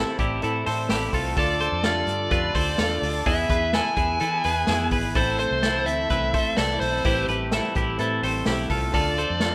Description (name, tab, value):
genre	jangly indie pop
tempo	127 BPM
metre	4/4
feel	straight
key	A minor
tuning	A4 = 438 Hz
part	electric guitar through a small old amp	accompaniment	0.0-9.5 s	A2 to B4	-35 LUFS	equal	none
part	warm upright piano	accompaniment	0.0-9.5 s	B3 to C6	-36 LUFS	equal	none
part	ensemble organ-string	sustained chords	0.0-9.5 s	D3 to G#4	-39 LUFS	equal	none
part	twelve-string electric guitar	arpeggios	0.0-9.5 s	E4 to C5	-29 LUFS	equal	none
part	vintage muted fingered electric bass	bass	0.0-9.5 s	G#1 to E3	-32 LUFS	equal	none
part	vintage drum kit	drums	0.2-9.5 s	hi-hat, kick drum, snare drum	-30 LUFS	equal	none
part	dark smooth lead guitar	melody	1.4-9.5 s	C5 to G#5	-28 LUFS	equal	overdrive
room	moderate digital room reverb, RT60 1.0 s, small room ambience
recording	rough home demo mix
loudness	-23 LUFS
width	mono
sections	0.0-9.5 A section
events	upright piano fill 0.0-1.4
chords	0.0 Am; 1.4 Dm; 3.3 E; 5.2 Am; 8.9 Dm